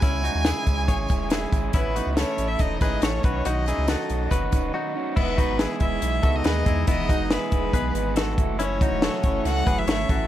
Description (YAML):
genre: jangly indie pop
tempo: 140 BPM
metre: 4/4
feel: straight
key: E major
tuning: A4 = 440 Hz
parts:
  - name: rich violin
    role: melody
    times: 0.0-10.3 s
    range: B4 to G#5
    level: -29 LUFS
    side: equal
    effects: tape echo
  - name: raw garage guitar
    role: accompaniment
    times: 0.0-10.3 s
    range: F#2 to E4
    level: -31 LUFS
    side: right 8 dB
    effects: overdrive, tape echo
  - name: direct-recorded clean electric guitar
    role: arpeggios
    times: 0.0-10.3 s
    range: B3 to C#5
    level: -30 LUFS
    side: left 4 dB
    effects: tape echo
  - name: warm sub bass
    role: bass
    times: 0.0-10.3 s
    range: D#1 to E2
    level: -27 LUFS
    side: equal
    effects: none
  - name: compact cocktail drum kit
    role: drums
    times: 0.0-10.2 s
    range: crash cymbal, hi-hat, kick drum, snare drum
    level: -24 LUFS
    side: equal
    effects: tape echo
  - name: tambourine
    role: percussion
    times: 0.0-4.6 s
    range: none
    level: -46 LUFS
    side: right 18 dB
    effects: none
  - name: brilliant trumpet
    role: second line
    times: 1.7-10.3 s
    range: B3 to F#4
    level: -37 LUFS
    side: left 12 dB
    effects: none
  - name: phased analog pad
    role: sustained chords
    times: 5.7-10.3 s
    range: E3 to G#4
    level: -33 LUFS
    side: right 1 dB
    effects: phaser, chorus
room: little or no reverb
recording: echo-heavy mix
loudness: -21 LUFS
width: side -12 dB against mid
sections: 0.0-5.2 A section; 5.2-10.3 B section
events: break 4.7-5.2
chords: 0.0 C#m; 1.7 A; 3.2 Badd9; 5.2 Emaj7